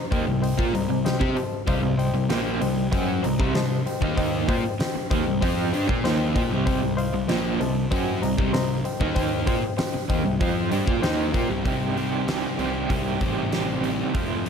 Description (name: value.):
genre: classic rock.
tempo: 96 BPM.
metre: 4/4.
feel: straight.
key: C dorian.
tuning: A4 = 438 Hz.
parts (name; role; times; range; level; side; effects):
barky reed electric piano; accompaniment; 0.0-11.6 s; C5 to Bb5; -31 LUFS; left 7 dB; overdrive, fast tremolo.
crunchy overdriven guitar; riff; 0.1-14.5 s; F2 to G4; -28 LUFS; left 10 dB; none.
crunchy overdriven guitar; riff; 0.1-14.5 s; F2 to G4; -27 LUFS; right 12 dB; tremolo.
fuzz picked electric bass; bass; 0.1-14.5 s; A1 to C3; -30 LUFS; equal; overdrive.
huge arena drum kit; drums; 0.1-14.5 s; hi-hat, kick drum, snare drum; -27 LUFS; equal; none.
room: light reverb, small room ambience.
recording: none.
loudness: -21 LUFS.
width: side -7 dB against mid.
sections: 0.0-11.7 A section; 11.7-14.5 B section.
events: none.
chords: 0.0 Cm.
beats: 0.43 1.06 | 1.68 2.31 2.93 3.55 | 4.18 4.80 5.42 6.05 | 6.67 7.29 7.92 8.54 | 9.16 9.79 10.41 11.03 | 11.66 12.28 12.90 13.53 | 14.15.